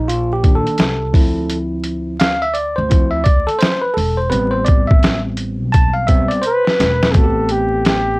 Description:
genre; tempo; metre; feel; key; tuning
hip hop, jazz-hop; 85 BPM; 4/4; swing 64% on 16ths; A minor; A4 = 440 Hz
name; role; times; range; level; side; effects
bell-like tine electric piano; accompaniment; 0.0-8.2 s; Eb3 to A5; -18 LUFS; equal; medium stereo tremolo, cassette tape
upright bass; bass; 0.0-8.2 s; E1 to D2; -22 LUFS; equal; transformer saturation
boom bap sampler-style drum kit; drums; 0.1-8.1 s; hi-hat, kick drum, snare drum; -14 LUFS; equal; vintage 12-bit sampler grit
breathy flugelhorn; melody; 6.5-8.2 s; G4 to B4; -16 LUFS; equal; cassette tape
room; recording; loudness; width
little or no reverb; home recording on cassette, vinyl crackle; -13 LUFS; side -25 dB against mid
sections
0.0-7.1 A section; 7.1-8.2 B section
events
tine electric piano solo 0.0-7.1; drum fill 6.4-7.1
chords
0.0 Cm9; 1.1 Dm9; 4.3 Am9

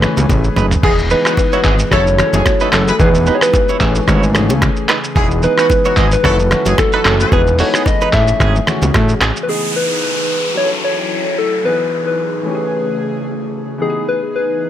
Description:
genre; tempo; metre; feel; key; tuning
afrobeats; 111 BPM; 4/4; swing 55% on 16ths; E major; A4 = 440 Hz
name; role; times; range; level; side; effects
soft struck synth lead; melody; 0.0-14.7 s; G#4 to E5; -17 LUFS; left 1 dB; chorus, ping-pong delay
warm grand piano; accompaniment; 0.0-14.7 s; E3 to B4; -22 LUFS; left 2 dB; none
airy breathy pad; sustained chords; 0.0-14.7 s; C#3 to A4; -24 LUFS; left 1 dB; chorus, sidechain pumping
fat analog bass; bass; 0.0-9.3 s; E1 to A2; -15 LUFS; equal; none
lo-fi sampler-style drum kit; drums; 0.0-9.5 s; crash cymbal, finger snaps, handclaps, hi-hat, kick drum, rim click, shaker, toms; -16 LUFS; equal; none
congas and bongos; percussion; 0.0-9.4 s; none; -24 LUFS; right 2 dB; none
direct-recorded clean electric guitar; riff; 0.6-9.3 s; A3 to E5; -22 LUFS; right 7 dB; tremolo, ping-pong delay
warm horn section; second line; 0.8-7.3 s; F#3 to B4; -23 LUFS; left 2 dB; none
downlifter; sound effects; 9.5-13.8 s; none; -22 LUFS; left 1 dB; none
room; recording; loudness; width
little or no reverb; none; -12 LUFS; side -11 dB against mid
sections
0.0-9.5 A section; 9.5-14.7 B section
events
drum fill 0.3-0.8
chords
0.0 Amaj7; 0.8 Emaj7; 1.9 F#m7; 3.0 Emaj7; 3.8 Amaj7; 5.2 Emaj7; 6.2 F#m7; 7.3 Emaj7; 8.1 Amaj7; 9.5 Emaj7; 10.6 F#m7; 11.6 Emaj7; 12.5 Amaj7; 13.8 Emaj7

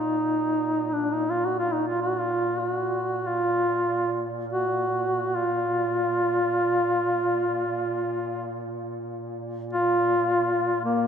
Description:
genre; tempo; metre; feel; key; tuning
caucasian folk, Caucasian lament; free time; none; none; unclear; A4 = 440 Hz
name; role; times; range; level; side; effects
warm duduk; melody; 0.0-11.1 s; Bb3 to Gb4; -23 LUFS; equal; none
mellow duduk; drone; 0.0-11.1 s; Bb2; -33 LUFS; right 3 dB; none
room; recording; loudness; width
wet church reverb, RT60 3.6 s; minimal, uncompressed stereo recording; -23 LUFS; side -7 dB against mid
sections
0.0-11.1 A section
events
none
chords
none

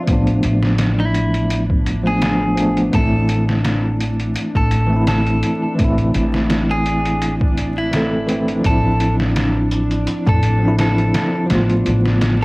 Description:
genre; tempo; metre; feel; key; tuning
trip hop; 84 BPM; 4/4; swing 54% on 16ths; A harmonic minor; A4 = 440 Hz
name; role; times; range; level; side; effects
bell-like tine electric piano; accompaniment; 0.0-12.4 s; E3 to A4; -19 LUFS; equal; tremolo, low-pass filter, cassette tape, tape echo
bowed-like drone; texture; 0.0-12.4 s; D4; -30 LUFS; equal; built-in reverb, cassette tape
upright bass; bass; 0.1-12.4 s; A1; -19 LUFS; equal; none
trip hop sampler-style drum kit; drums; 0.1-12.4 s; hi-hat, kick drum, snare drum; -21 LUFS; equal; overdrive, cassette tape
clean electric guitar; melody; 1.0-12.4 s; E4 to A4; -24 LUFS; equal; vintage 12-bit sampler grit, tape echo
room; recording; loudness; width
moderate small room reverb, RT60 0.5 s; home recording on cassette, vinyl crackle; -14 LUFS; side -25 dB against mid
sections
0.0-12.4 A section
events
none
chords
0.1 Bm7b5/A; 2.9 Am; 8.6 Dm9/A; 11.5 Bm7b5/A

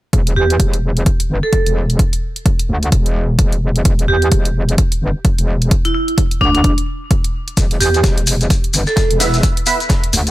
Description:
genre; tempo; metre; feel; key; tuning
bass house; 129 BPM; 4/4; swing 59% on 16ths; E minor; A4 = 440 Hz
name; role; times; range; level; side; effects
metallic wobble bass; bass; 0.1-10.3 s; E1 to E2; -17 LUFS; equal; chorus, overdrive, sidechain pumping
electronic hi-hat; drums; 0.1-10.3 s; none; -22 LUFS; right 1 dB; none
electronic kick drum; drums; 0.1-10.0 s; none; -15 LUFS; equal; none
vibraphone with hard mallets; melody; 0.4-9.1 s; D4 to A4; -19 LUFS; right 2 dB; dub echo
crunchy breakbeat drum kit; drums; 7.6-10.3 s; hi-hat, snare drum; -30 LUFS; equal; sidechain pumping on hats, high-pass filter on hats, high-pass filter on snare, high-pass filter on room
maracas; percussion; 7.6-10.3 s; none; -21 LUFS; left 4 dB; none
percussive organ stab; stabs; 9.2-9.8 s; B3 to E5; -19 LUFS; right 3 dB; ensemble chorus, sidechain pumping, dub echo
room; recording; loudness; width
small room ambience; none; -13 LUFS; side -16 dB against mid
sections
0.1-10.3 A section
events
none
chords
0.1 E5

